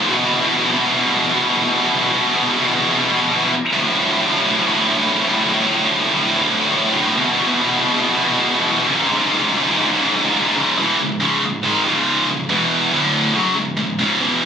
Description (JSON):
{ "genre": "metal", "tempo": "140 BPM", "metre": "4/4", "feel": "straight", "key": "C# phrygian", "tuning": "A4 = 440 Hz", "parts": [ { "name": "heavy high-gain guitar", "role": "solo", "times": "0.0-14.4 s", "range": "C#2 to G#3", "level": "-14 LUFS", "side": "equal", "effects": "distortion" } ], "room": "digital ambience", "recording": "recorded on a phone in the room, club reverb", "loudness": "-14 LUFS", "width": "side -7 dB against mid", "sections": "0.0-10.6 A section; 10.6-14.5 B section", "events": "none", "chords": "0.1 E5; 3.7 D5; 7.2 E5; 8.9 C#5; 10.6 C#m; 12.5 E5; 12.9 D5; 13.4 C#m", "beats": "| 0.30 0.73 1.16 1.59 | 2.02 2.45 2.88 3.31 | 3.73 4.16 4.59 5.02 | 5.45 5.87 6.30 6.73 | 7.15 7.58 8.01 8.44 | 8.86 9.29 9.72 10.14 | 10.57 11.00 11.43 11.86 | 12.28 12.71 13.14 13.57 | 14.00" }